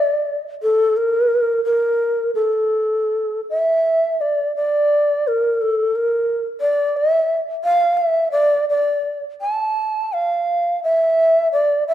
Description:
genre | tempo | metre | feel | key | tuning
japanese traditional | 80-90 BPM | 2/4 | rubato | A miyako bushi | A4 = 438 Hz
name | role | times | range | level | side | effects
mellow long shakuhachi | solo | 0.0-11.9 s | A4 to A5 | -16 LUFS | equal | none
room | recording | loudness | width
moderate recital hall reverb, RT60 1.7 s | none | -16 LUFS | side -11 dB against mid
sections
0.0-3.8 A section; 3.8-11.9 B section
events
none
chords
none

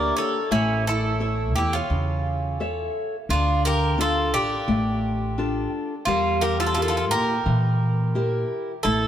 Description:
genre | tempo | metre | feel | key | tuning
greek folk, Greek bouzouki band | 86 BPM | 4/4 | straight | unclear | A4 = 438 Hz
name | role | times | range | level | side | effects
Greek bouzouki | melody | 0.0-9.1 s | E4 to D5 | -26 LUFS | right 2 dB | none
Greek bouzouki | second line | 0.0-9.1 s | Bb3 to Bb4 | -30 LUFS | left 1 dB | none
fingerpicked steel-string acoustic guitar | accompaniment | 0.0-9.1 s | C#3 to E5 | -27 LUFS | left 2 dB | none
upright bass | bass | 0.0-9.1 s | A1 to Bb2 | -25 LUFS | right 1 dB | none
room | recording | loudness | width
moderate plate reverb, RT60 3.7 s | heard from further back in the room | -21 LUFS | side -10 dB against mid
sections
0.0-9.1 A section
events
none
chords
0.0 Gm; 0.5 A; 3.3 Dm; 6.1 Edim

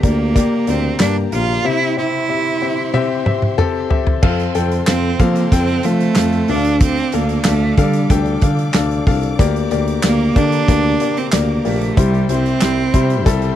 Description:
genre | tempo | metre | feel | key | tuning
piano-driven pop | 93 BPM | 4/4 | straight | F major | A4 = 440 Hz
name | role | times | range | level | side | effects
rich cello | melody | 0.0-13.6 s | G3 to F4 | -19 LUFS | right 5 dB | none
warm upright piano | accompaniment | 0.0-13.6 s | C3 to G5 | -20 LUFS | left 8 dB | none
warm studio string section | sustained chords | 0.0-13.6 s | G4 to D6 | -32 LUFS | right 2 dB | none
warm tuba | bass | 0.0-13.5 s | Bb1 to F3 | -19 LUFS | equal | none
loose indie drum kit | drums | 0.0-13.6 s | crash cymbal, handclaps, hi-hat, kick drum, snare drum, toms | -16 LUFS | right 1 dB | none
room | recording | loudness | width
little or no reverb | dry, close 1970s-style studio recording | -14 LUFS | side -11 dB against mid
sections
0.0-4.2 A section; 4.2-13.6 B section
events
drum fill 2.9-4.2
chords
0.0 Gm/D; 1.6 C; 4.2 F; 6.5 Dm; 9.4 Gm/D; 12.0 C

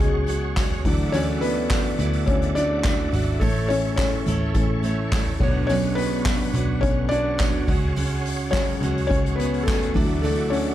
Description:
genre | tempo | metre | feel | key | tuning
piano-driven pop | 105 BPM | 4/4 | straight | unclear | A4 = 440 Hz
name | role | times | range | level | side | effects
felt-muted upright piano | accompaniment | 0.0-10.7 s | D3 to D5 | -25 LUFS | left 3 dB | plate reverb
bright tonewheel organ | sustained chords | 0.0-10.7 s | D4 to D6 | -34 LUFS | equal | chorus vibrato, fast rotary speaker, plate reverb
picked steel-string acoustic guitar | riff | 0.0-10.7 s | B2 to D5 | -29 LUFS | right 5 dB | none
vintage muted picked electric bass | bass | 0.0-10.7 s | G#1 to D2 | -26 LUFS | equal | none
soft-mallet drum kit | drums | 0.0-10.7 s | crash cymbal, handclaps, hi-hat, kick drum, snare drum, toms | -24 LUFS | equal | none
tambourine | percussion | 0.6-9.8 s | none | -42 LUFS | left 3 dB | none
room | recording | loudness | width
light reverb, studio reverb | dark, warm production | -20 LUFS | side -12 dB against mid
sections
0.0-10.7 A section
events
felt piano solo 0.0-10.7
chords
0.0 C#sus4; 0.8 Dadd9; 3.4 A; 5.4 Bmadd9; 7.7 C#sus4; 10.0 Dadd9

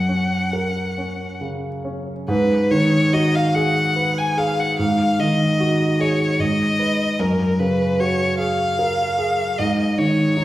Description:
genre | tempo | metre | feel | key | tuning
classical, impressionist duo for violin and grand piano | 74 BPM | 3/4 | uneven beats, rubato | G# dorian | A4 = 440 Hz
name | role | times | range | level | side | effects
rich violin | melody | 0.0-10.4 s | A#4 to G#5 | -21 LUFS | left 1 dB | none
warm concert grand piano | accompaniment | 0.0-10.4 s | F#2 to B4 | -19 LUFS | equal | none
room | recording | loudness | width
wet recital hall reverb, RT60 1.8 s | heard from further back in the room | -17 LUFS | side -15 dB against mid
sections
0.0-2.3 A section; 2.3-10.4 B section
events
none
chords
0.0 F#; 2.3 G#m7; 4.8 G#7sus4; 6.4 G#m; 7.2 F#add9; 9.6 G#5

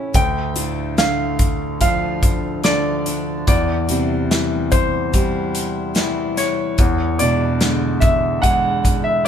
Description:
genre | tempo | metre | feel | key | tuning
pop ballad | 72 BPM | 4/4 | straight | unclear | A4 = 438 Hz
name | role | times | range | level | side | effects
warm concert grand piano | accompaniment | 0.0-9.3 s | D2 to E4 | -21 LUFS | equal | none
fingerpicked plugged-in steel-string acoustic guitar | arpeggios | 0.0-9.3 s | E2 to F4 | -28 LUFS | left 4 dB | none
modern studio drum kit | drums | 0.1-9.3 s | hi-hat, kick drum, snare drum | -19 LUFS | equal | none
bright concert grand piano | melody | 0.2-9.3 s | C5 to G5 | -22 LUFS | right 1 dB | none
room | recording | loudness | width
moderate studio reverb, RT60 0.7 s | band playing live in one room | -16 LUFS | side -8 dB against mid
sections
0.0-9.3 A section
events
none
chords
0.1 Dm; 3.5 C/E; 6.8 E7

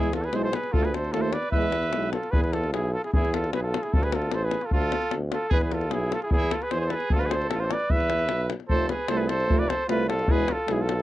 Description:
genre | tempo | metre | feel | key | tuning
balkan folk, Balkan brass band | 151 BPM | 2/4 | straight | E phrygian dominant | A4 = 440 Hz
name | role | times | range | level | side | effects
clear flugelhorn | melody | 0.0-11.0 s | G#4 to E5 | -28 LUFS | equal | none
clear trumpet | second line | 0.0-11.0 s | E4 to B4 | -33 LUFS | right 5 dB | none
clear euphonium | accompaniment | 0.0-2.1, 8.7-10.8 s | E4 to F4 | -32 LUFS | left 6 dB | none
warm euphonium | accompaniment | 0.0-2.1, 8.7-10.8 s | G#3 to A3 | -30 LUFS | right 6 dB | none
clear tuba | bass | 0.0-11.0 s | E1 to E2 | -29 LUFS | equal | none
davul | percussion | 0.0-11.0 s | none | -27 LUFS | left 1 dB | none
room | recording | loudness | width
little or no reverb | dry, close 1970s-style studio recording | -23 LUFS | side -15 dB against mid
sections
0.0-2.3 A section; 2.3-8.7 A section; 8.7-11.0 B section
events
none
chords
0.0 E; 0.7 Dm; 1.5 E; 2.3 E5; 3.9 Dm; 5.5 E5; 7.1 D5; 7.9 E5; 8.7 F; 10.3 E

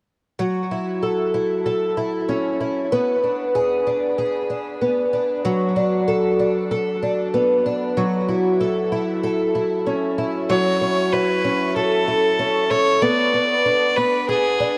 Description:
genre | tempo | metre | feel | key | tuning
dream pop | 95 BPM | 4/4 | straight | A major | A4 = 440 Hz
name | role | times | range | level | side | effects
picked twelve-string acoustic guitar | arpeggios | 0.4-14.8 s | F#3 to A4 | -21 LUFS | equal | analog chorus, tape echo
bright fiddle | melody | 10.5-14.8 s | G#4 to D5 | -22 LUFS | equal | tape echo
room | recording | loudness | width
moderate shimmer reverb, RT60 4.6 s | dark, warm production | -20 LUFS | mono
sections
0.4-10.5 A section; 10.5-14.8 B section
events
none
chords
0.4 A6; 2.9 Bm6; 5.4 D6; 8.0 F#m7; 13.0 Bm6

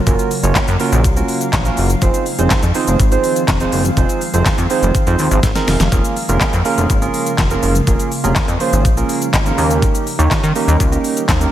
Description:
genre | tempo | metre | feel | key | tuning
dance-pop | 123 BPM | 4/4 | straight | F minor | A4 = 436 Hz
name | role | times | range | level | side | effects
glassy FM pad | sustained chords | 0.0-11.5 s | Db3 to F5 | -24 LUFS | equal | ensemble chorus, built-in reverb, sidechain pumping
soft electric-piano-like synth keys | accompaniment | 0.1-11.5 s | Bb3 to Db5 | -18 LUFS | right 4 dB | chorus, sidechain pumping, slapback echo
chorused synth bass | bass | 0.1-11.5 s | F1 to Eb3 | -16 LUFS | equal | sidechain pumping
pop drum kit | drums | 0.1-11.5 s | handclaps, hi-hat, kick drum, shaker, snare drum | -17 LUFS | equal | none
room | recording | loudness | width
light reverb, digital ambience | none | -13 LUFS | side -12 dB against mid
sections
0.0-11.5 A section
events
drum fill 5.4-5.9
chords
0.0 Gbmaj7; 2.0 Fm7; 5.9 Bbm7/F; 9.6 Eb7

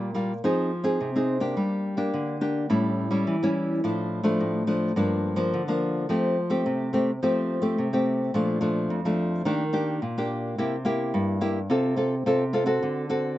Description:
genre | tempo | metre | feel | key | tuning
samba | 106 BPM | 4/4 | straight | unclear | A4 = 440 Hz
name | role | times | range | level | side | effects
nylon-string guitar | solo | 0.0-13.4 s | F2 to A4 | -23 LUFS | equal | none
room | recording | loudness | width
little or no reverb | recorded outdoors, with no room sound, nothing above 7.7 kHz | -23 LUFS | side -14 dB against mid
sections
0.0-8.3 A section; 8.3-13.4 B section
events
none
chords
0.4 Fm7; 1.6 Gm; 2.7 A7; 3.8 Dm/A; 5.0 Gm7; 6.1 Fadd9; 8.3 Bbmaj7; 9.5 Ebmaj7; 10.6 C7; 11.7 F/C; 12.8 D7

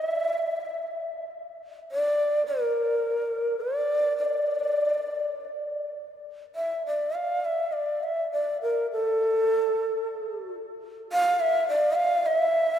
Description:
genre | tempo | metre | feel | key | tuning
japanese traditional | 53 BPM | 2/4 | rubato | D hirajoshi | A4 = 442 Hz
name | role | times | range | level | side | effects
breathy reedy long shakuhachi | solo | 0.0-12.8 s | A4 to F5 | -24 LUFS | equal | none
room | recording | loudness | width
wet cathedral reverb, RT60 4.8 s | recorded in a church or concert hall | -24 LUFS | side -9 dB against mid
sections
0.0-6.5 A section; 6.5-12.8 B section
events
none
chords
none

